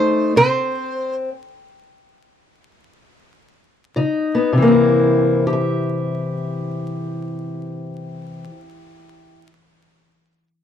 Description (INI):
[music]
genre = acoustic country blues, solo or duo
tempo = free time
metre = none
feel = none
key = C mixolydian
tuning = A4 = 440 Hz
[part]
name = metal-body resonator slide guitar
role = melody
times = 0.0-1.2 s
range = C5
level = -17 LUFS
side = right 2 dB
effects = none
[part]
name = fingerpicked steel-string acoustic guitar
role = accompaniment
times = 0.0-9.4 s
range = F2 to E5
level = -18 LUFS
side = left 2 dB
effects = none
[sound]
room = light reverb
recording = dry, close 1970s-style studio recording, vinyl crackle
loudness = -17 LUFS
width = side -9 dB against mid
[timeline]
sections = 0.0-4.5 A section; 4.5-9.1 B section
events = slowing down 0.4-4.5; stop 0.4-4.0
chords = 0.4 N.C.; 4.0 Dbsus2; 4.5 C7